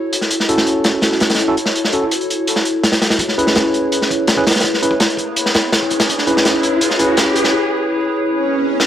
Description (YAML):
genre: drum and bass, jungle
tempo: 166 BPM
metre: 4/4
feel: straight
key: C# minor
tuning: A4 = 439 Hz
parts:
  - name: warbly tape-like pad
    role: sustained chords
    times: 0.0-8.4 s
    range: E4 to C#5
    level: -20 LUFS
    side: left 1 dB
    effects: chorus, built-in reverb
  - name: crunchy breakbeat drum kit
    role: drums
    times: 0.1-8.9 s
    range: hi-hat, kick drum, snare drum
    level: -16 LUFS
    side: equal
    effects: high-pass filter on kick, high-pass filter on hats, high-pass filter on snare, high-pass filter on room
  - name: bright tine electric piano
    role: stabs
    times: 0.5-7.5 s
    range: C#4 to B4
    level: -19 LUFS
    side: right 1 dB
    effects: medium stereo tremolo, dub echo
  - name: riser and swell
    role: sound effects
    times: 4.7-8.9 s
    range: none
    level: -22 LUFS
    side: left 1 dB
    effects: none
room: light reverb, small room ambience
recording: dry, gritty hardware recording, vinyl crackle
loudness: -13 LUFS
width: side -10 dB against mid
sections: 0.0-3.2 A section; 3.2-8.9 B section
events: build-up 3.2-8.9; riser 4.7-7.5; break 7.5-8.9; swell 8.3-8.9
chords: 0.0 F#m7; 3.2 C#m7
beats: | 0.31 0.67 1.03 1.39 | 1.75 2.12 2.48 2.84 | 3.20 3.56 3.92 4.28 | 4.64 5.01 5.37 5.73 | 6.09 6.45 6.81 7.17 | 7.54 7.90 8.26 8.62